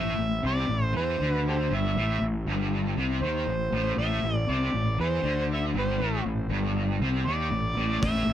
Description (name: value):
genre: blues rock power trio and southern rock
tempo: 119 BPM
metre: 4/4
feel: straight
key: A minor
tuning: A4 = 441 Hz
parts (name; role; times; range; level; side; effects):
- overdriven harmonica; melody; 0.0-8.3 s; G4 to E5; -31 LUFS; equal; none
- overdriven electric guitar; riff; 0.0-8.3 s; G2 to E3; -28 LUFS; left 1 dB; harmonic tremolo
- fuzz fingered electric bass; bass; 0.0-8.3 s; G1 to E2; -29 LUFS; equal; overdrive
- vintage drum kit; drums; 8.0-8.1 s; hi-hat, kick drum; -32 LUFS; equal; none
room: little or no reverb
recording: none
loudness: -24 LUFS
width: side -11 dB against mid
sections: 0.0-8.3 A section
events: none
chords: 0.0 Am